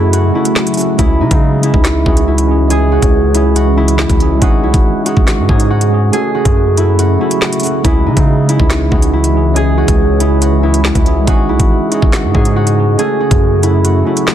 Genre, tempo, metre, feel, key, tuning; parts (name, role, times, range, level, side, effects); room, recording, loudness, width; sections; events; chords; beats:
hip hop, drill; 140 BPM; 4/4; half-time; C# minor; A4 = 439 Hz
concert harp; melody; 0.0-14.3 s; D#4 to G#4; -16 LUFS; left 1 dB
mellow tine electric piano; accompaniment; 0.0-14.3 s; G#3 to A4; -18 LUFS; right 4 dB; medium stereo tremolo
deep dark ambient pad; sustained chords; 0.0-14.3 s; C#3 to D#5; -20 LUFS; left 1 dB; chorus, built-in reverb
distorted 808-style bass; bass; 0.0-14.0 s; G#1 to C#3; -13 LUFS; equal; distortion
drill drum kit; drums; 0.1-14.3 s; handclaps, hi-hat, kick drum, snare drum; -13 LUFS; equal
little or no reverb; dense, heavily limited modern master; -9 LUFS; side -10 dB against mid
1.0-14.3 A section
0.0 F#m; 1.0 C#m; 4.4 G#sus4; 6.1 F#m; 7.8 C#m; 11.3 G#sus4; 13.0 F#m
0.13 0.56 | 0.99 1.42 1.85 2.27 | 2.70 3.13 3.56 3.99 | 4.42 4.85 5.28 5.70 | 6.13 6.56 6.99 7.42 | 7.85 8.28 8.70 9.13 | 9.56 9.99 10.42 10.85 | 11.28 11.70 12.13 12.56 | 12.99 13.42 13.85 14.28